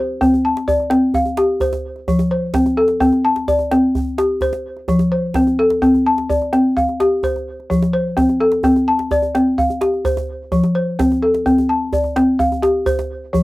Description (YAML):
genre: west african traditional, West African string and xylophone music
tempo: 85 BPM (dotted quarters)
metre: 12/8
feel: straight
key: unclear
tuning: A4 = 440 Hz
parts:
  - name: balafon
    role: arpeggios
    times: 0.0-13.4 s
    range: F3 to A5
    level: -15 LUFS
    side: left 1 dB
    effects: none
  - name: djembe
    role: percussion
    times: 0.2-13.4 s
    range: none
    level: -25 LUFS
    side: right 3 dB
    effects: none
room: light reverb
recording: recorded outdoors, with no room sound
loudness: -14 LUFS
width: side -19 dB against mid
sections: 0.2-13.4 A section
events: none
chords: 0.2 C5; 1.6 F; 3.0 C5; 4.4 F; 5.8 C5; 7.2 F; 8.6 C5; 10.1 F; 11.5 C5; 12.9 F5